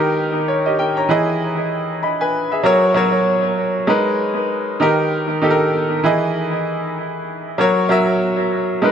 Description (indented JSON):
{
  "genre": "afrobeats",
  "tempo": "97 BPM",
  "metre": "4/4",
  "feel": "swing 58% on 16ths",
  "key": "unclear",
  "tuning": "A4 = 440 Hz",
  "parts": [
    { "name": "clear grand piano", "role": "solo", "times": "0.0-8.9 s", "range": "D#3 to B5", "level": "-15 LUFS", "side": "equal", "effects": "analog delay" }
  ],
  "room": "moderate spring reverb, RT60 1.2 s, small room reverb",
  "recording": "echo-heavy mix",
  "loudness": "-15 LUFS",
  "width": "side -8 dB against mid",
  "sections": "0.0-8.9 A section",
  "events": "none",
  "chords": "0.0 D#; 1.1 Emaj7; 2.6 F#; 3.9 G#madd9; 4.8 D#; 6.0 Emaj7; 7.6 F#"
}